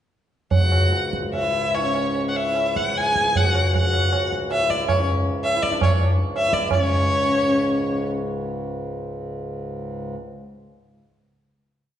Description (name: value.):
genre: indian classical, Hindustani.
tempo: 145-192 BPM.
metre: 4/4.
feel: straight.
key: C# raga bhairavi.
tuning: A4 = 441 Hz.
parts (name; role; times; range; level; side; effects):
rich violin; melody; 0.5-8.0 s; C#5 to G#5; -22 LUFS; left 1 dB; none.
hand-pumped harmonium; drone; 0.5-10.2 s; C#2 to G#2; -29 LUFS; left 1 dB; none.
tabla; percussion; 0.5-6.8 s; none; -22 LUFS; right 1 dB; none.
warm sarangi; second line; 0.6-8.1 s; C#4 to G#4; -28 LUFS; left 1 dB; none.
room: wet recital hall reverb, RT60 1.7 s.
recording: recorded in a church or concert hall, nothing above 10.8 kHz.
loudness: -19 LUFS.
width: side -10 dB against mid.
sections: 0.5-6.7 theme; 6.7-9.4 final chord.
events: speeding up 0.5-9.4.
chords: none.